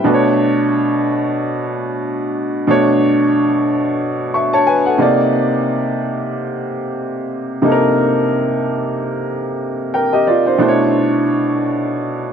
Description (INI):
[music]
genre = R&B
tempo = 91 BPM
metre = 4/4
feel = swing 58% on 16ths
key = unclear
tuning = A4 = 440 Hz
[part]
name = clear baby grand piano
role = solo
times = 0.0-12.3 s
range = B2 to C#6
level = -14 LUFS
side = equal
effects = none
[sound]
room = moderate plate reverb, RT60 3.4 s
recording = worn, warbling old tape, cassette tape, warbly pitch drift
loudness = -14 LUFS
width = side -7 dB against mid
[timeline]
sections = 0.0-10.6 A section; 10.6-12.3 B section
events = none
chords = 0.0 Bm9; 5.0 Cm9; 10.6 Bm11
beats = | 0.05 0.71 1.37 2.03 | 2.69 3.34 4.00 4.66 | 5.32 5.98 6.64 7.30 | 7.96 8.62 9.28 9.94 | 10.60 11.26 11.92